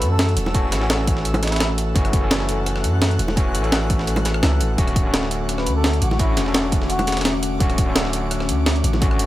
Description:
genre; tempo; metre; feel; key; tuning
liquid drum and bass; 170 BPM; 4/4; straight; unclear; A4 = 440 Hz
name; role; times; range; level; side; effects
trumpet with bucket mute; melody; 0.0-1.7, 5.6-7.2 s; E4 to B4; -30 LUFS; left 1 dB; vintage 12-bit sampler grit, tape echo
overdriven tine electric piano; accompaniment; 0.0-9.3 s; D3 to A4; -25 LUFS; equal; tape echo
airy breathy pad; sustained chords; 0.0-9.3 s; C#4 to F#6; -29 LUFS; left 4 dB; chorus, sidechain pumping
long sustained 808-style bass; bass; 0.0-9.3 s; D1 to F#2; -22 LUFS; equal; none
breakbeat sampler-style drum kit; drums; 0.0-9.3 s; hi-hat, rim click, snare drum; -24 LUFS; right 1 dB; none
breakbeat sampler-style drum kit; drums; 0.0-9.3 s; hi-hat, snare drum; -29 LUFS; right 1 dB; high-pass filter on hats, high-pass filter on snare
electronic kick drum; drums; 0.5-9.1 s; none; -20 LUFS; equal; overdrive
bongos; percussion; 0.5-9.0 s; none; -26 LUFS; right 1 dB; none
room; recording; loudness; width
little or no reverb; none; -17 LUFS; side -15 dB against mid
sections
0.0-9.3 A section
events
none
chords
0.0 F#m7; 4.8 Dmaj7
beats
0.19 | 0.55 0.90 1.25 1.60 | 1.96 2.31 2.66 3.02 | 3.37 3.72 4.08 4.43 | 4.78 5.13 5.49 5.84 | 6.19 6.55 6.90 7.25 | 7.61 7.96 8.31 8.66 | 9.02

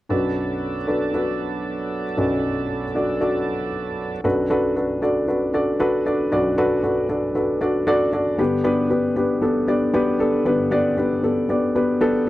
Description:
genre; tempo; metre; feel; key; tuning
pop; 116 BPM; 4/4; straight; unclear; A4 = 440 Hz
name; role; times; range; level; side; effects
warm upright piano; accompaniment; 0.1-12.3 s; B1 to D5; -19 LUFS; equal; none
overdriven tonewheel organ; sustained chords; 0.1-4.2 s; F#3 to A4; -28 LUFS; right 4 dB; slow rotary speaker
room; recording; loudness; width
light reverb; dry, close 1970s-style studio recording; -19 LUFS; side -16 dB against mid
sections
0.1-4.2 A section; 4.2-12.3 B section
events
none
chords
0.1 Bm7; 8.4 G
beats
| 0.10 0.62 1.14 1.66 | 2.17 2.69 3.21 3.73 | 4.25 4.76 5.28 5.80 | 6.32 6.84 7.35 7.87 | 8.39 8.91 9.43 9.94 | 10.46 10.98 11.49 12.01

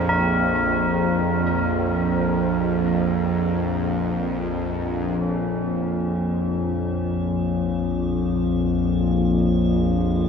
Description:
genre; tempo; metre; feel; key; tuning
dark ambient drone; free time; none; none; Bb minor; A4 = 440 Hz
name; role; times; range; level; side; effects
tubular bells; arpeggios; 0.0-10.3 s; Db4 to Bb4; -28 LUFS; left 1 dB; tape echo
bowed-like drone; drone; 0.0-10.3 s; Bb1 to F2; -20 LUFS; equal; built-in reverb
metallic inharmonic drone; texture; 6.0-10.3 s; F4; -34 LUFS; right 3 dB; chorus, built-in reverb
room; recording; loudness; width
wet huge ambient reverb, RT60 8.7 s; none; -20 LUFS; side -6 dB against mid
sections
0.0-5.2 A section; 5.2-10.3 B section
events
fade-in on synth drone 5.2-10.3; fade-in on tubular bells 5.2-10.3; filter sweep on synth drone 5.2-10.3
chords
0.0 Bbsus2; 5.2 Bbm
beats
free time

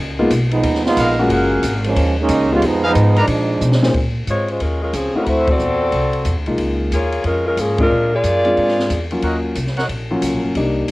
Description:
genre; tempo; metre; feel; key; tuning
jazz, big band swing; 181 BPM; 4/4; swing 63% on 8ths; unclear; A4 = 438 Hz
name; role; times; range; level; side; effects
upright bass; bass; 0.0-10.9 s; Gb1 to Cb3; -20 LUFS; equal; none
warm grand piano; accompaniment; 0.2-10.9 s; Bb2 to C5; -19 LUFS; left 1 dB; cassette tape
open jazz drum kit; drums; 0.3-10.9 s; hi-hat, kick drum, ride cymbal, snare drum; -25 LUFS; equal; cassette tape
clear trombone section; second line; 0.5-3.8 s; F3 to F4; -17 LUFS; right 2 dB; cassette tape, plate reverb
clear trumpet section; stabs; 1.0-3.3, 9.2-9.9 s; Ab4 to Bb5; -21 LUFS; equal; cassette tape, plate reverb
warm saxophone section; melody; 4.3-9.1 s; F3 to D5; -17 LUFS; left 1 dB; cassette tape, plate reverb
room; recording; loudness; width
moderate booth ambience, RT60 0.2 s; home recording on cassette; -15 LUFS; side -19 dB against mid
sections
0.0-3.9 A section; 3.9-10.9 B section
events
trombone section solo 0.0-3.9; drum fill 3.6-3.9; band accent 5.4, 7.8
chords
0.0 Db13; 1.3 Gbmaj9; 2.6 Fm7b5; 3.3 Bb7b9; 3.9 Bbm11; 5.3 D9; 6.6 Db6; 7.9 Bb7; 9.2 Ebm7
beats
0.30 0.64 0.97 | 1.30 1.63 1.96 2.29 | 2.62 2.95 3.28 3.61 | 3.94 4.28 4.61 4.94 | 5.27 5.60 5.93 6.26 | 6.60 6.93 7.26 7.59 | 7.92 8.25 8.58 8.91 | 9.24 9.57 9.90 10.23 | 10.56 10.89

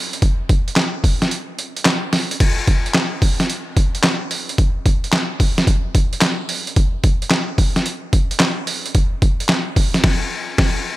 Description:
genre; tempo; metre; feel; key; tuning
R&B; 110 BPM; 4/4; swing 66% on 16ths; none; none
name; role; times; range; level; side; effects
boom bap sampler-style drum kit; drums; 0.1-10.8 s; crash cymbal, handclaps, hi-hat, kick drum, snare drum; -16 LUFS; equal; overdrive
room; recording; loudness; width
digital ambience; none; -16 LUFS; side -17 dB against mid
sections
0.0-2.4 A section; 2.4-11.0 B section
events
break 1.3-2.4; band accent 10.0-11.0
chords
none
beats
| 0.22 0.77 1.31 1.86 | 2.40 2.95 3.49 4.04 | 4.58 5.13 5.67 6.22 | 6.77 7.31 7.86 8.40 | 8.95 9.49 10.04 10.58

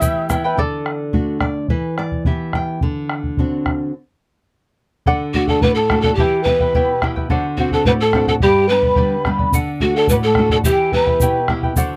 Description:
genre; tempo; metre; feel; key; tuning
andean folk, Andean ensemble; 107 BPM; 2/4; straight; unclear; A4 = 439 Hz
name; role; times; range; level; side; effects
breathy mellow pan flute; melody; 0.0-0.3, 5.3-11.5 s; F#4 to E5; -19 LUFS; equal; none
mellow quena; second line; 0.0-0.2, 5.4-11.5 s; F#5 to E6; -28 LUFS; equal; none
charango; accompaniment; 0.0-2.5, 5.1-12.0 s; E4 to B5; -26 LUFS; equal; none
nylon-string guitar; accompaniment; 0.0-12.0 s; G2 to G5; -24 LUFS; equal; none
bombo; percussion; 0.0-11.9 s; none; -23 LUFS; equal; none
egg shaker; percussion; 0.0-0.4, 9.5-11.9 s; none; -30 LUFS; equal; none
room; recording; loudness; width
little or no reverb; close, detailed microphones; -17 LUFS; mono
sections
0.6-5.1 A section; 5.1-12.0 B section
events
charango solo 0.6-5.1; nylon-string guitar fill 1.1-2.8; stop 3.9-5.1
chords
0.0 Em; 0.6 D; 1.7 Em; 2.8 D7; 3.9 N.C.; 5.1 D; 6.2 Em; 7.3 D7; 8.4 G; 9.5 D; 10.7 Em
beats
0.02 | 0.58 1.14 | 1.70 2.26 | 2.82 3.38 | 3.94 4.50 | 5.06 5.62 | 6.17 6.74 | 7.29 7.85 | 8.41 8.97 | 9.53 10.09 | 10.65 11.21 | 11.77

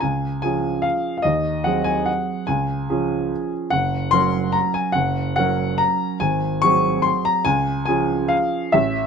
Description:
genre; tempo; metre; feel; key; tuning
classical, piano waltz; 145 BPM; 3/4; uneven beats, rubato; Db major from 3.7 s; A4 = 439 Hz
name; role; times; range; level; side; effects
warm baby grand piano; solo; 0.0-9.1 s; Gb1 to Db6; -18 LUFS; equal; none
room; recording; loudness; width
light reverb; close, detailed microphones; -18 LUFS; side -6 dB against mid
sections
0.0-9.1 A section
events
none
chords
0.0 Db; 1.3 Ab7/Eb; 2.5 Db; 3.7 Gb; 6.2 Ab7; 7.5 Db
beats
| 0.04 0.43 0.85 | 1.25 1.66 2.08 | 2.49 2.89 3.31 | 3.72 4.13 4.55 | 4.96 5.37 5.79 | 6.21 6.62 7.05 | 7.46 7.88 8.32 | 8.74

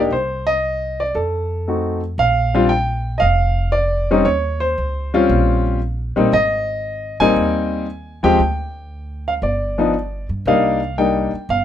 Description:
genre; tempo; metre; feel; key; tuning
jazz piano trio; 116 BPM; 4/4; swing 69% on 8ths; Bb mixolydian; A4 = 440 Hz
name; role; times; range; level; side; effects
clear baby grand piano; melody; 0.0-11.6 s; F3 to Ab5; -17 LUFS; left 1 dB; none
upright bass; bass; 0.0-11.6 s; F1 to G2; -22 LUFS; right 1 dB; none
room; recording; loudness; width
light reverb; minimal, uncompressed stereo recording; -16 LUFS; side -10 dB against mid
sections
0.0-2.2 A section; 2.2-11.6 B section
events
none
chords
0.1 Cm; 1.2 F7b9; 2.2 Bb6; 4.3 Eb13; 6.3 Abmaj9; 8.4 Dsus4; 9.4 G5; 10.5 Cm9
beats
| 0.12 0.64 1.15 1.67 | 2.19 2.71 3.23 3.74 | 4.26 4.78 5.29 5.81 | 6.33 6.84 7.36 7.88 | 8.39 8.91 9.43 9.95 | 10.46 10.98 11.50

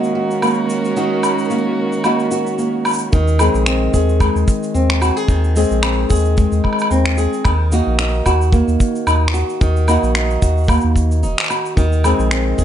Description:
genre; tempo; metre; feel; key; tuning
folktronica; 111 BPM; 4/4; swing 56% on 16ths; unclear; A4 = 444 Hz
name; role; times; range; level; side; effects
muted string quartet; sustained chords; 0.0-3.1 s; Eb3 to C5; -21 LUFS; right 3 dB; none
flamenco guitar; arpeggios; 0.0-12.6 s; Eb3 to Ab4; -18 LUFS; equal; low-pass filter, digital delay
electronic shaker, woodblock and finger snaps; drums; 0.0-12.6 s; none; -21 LUFS; left 1 dB; overdrive
warm sub bass; bass; 3.1-12.6 s; Eb1 to Eb2; -16 LUFS; equal; none
kick drum; drums; 3.1-12.6 s; none; -16 LUFS; equal; none
room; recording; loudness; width
light reverb; nothing above 10.7 kHz; -14 LUFS; side -10 dB against mid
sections
0.0-3.1 A section; 3.1-12.6 B section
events
none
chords
0.0 Ebm; 3.1 Ab; 7.4 Ebm; 11.8 Ab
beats
0.42 | 0.96 1.50 2.04 2.58 | 3.12 3.66 4.21 4.75 | 5.29 5.83 6.37 6.91 | 7.45 7.99 8.53 9.07 | 9.61 10.15 10.69 11.23 | 11.77 12.31

